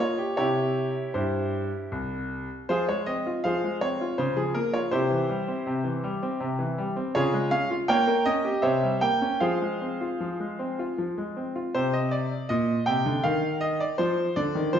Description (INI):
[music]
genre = classical-period piano sonatina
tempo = 80 BPM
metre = 3/4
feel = straight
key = F minor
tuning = A4 = 440 Hz
[part]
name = bright grand piano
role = solo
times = 0.0-14.8 s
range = C2 to G5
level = -24 LUFS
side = equal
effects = none
[sound]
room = wet recital hall reverb, RT60 1.4 s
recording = heard from further back in the room, nothing above 7.6 kHz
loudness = -24 LUFS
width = side -8 dB against mid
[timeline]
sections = 0.0-11.8 A section; 11.8-14.8 B section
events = none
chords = 0.4 C; 2.7 Fm; 4.2 Bbm/Db; 4.9 C; 7.2 Db; 7.9 Gdim/Bb; 8.6 C7b9; 9.4 Fm; 11.8 Bb69; 13.2 N.C.; 14.0 F5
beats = | 0.38 1.15 1.92 | 2.69 3.45 4.19 | 4.93 5.67 6.41 | 7.15 7.89 8.64 | 9.42 10.21 10.98 | 11.75 12.50 13.24 | 13.99 14.74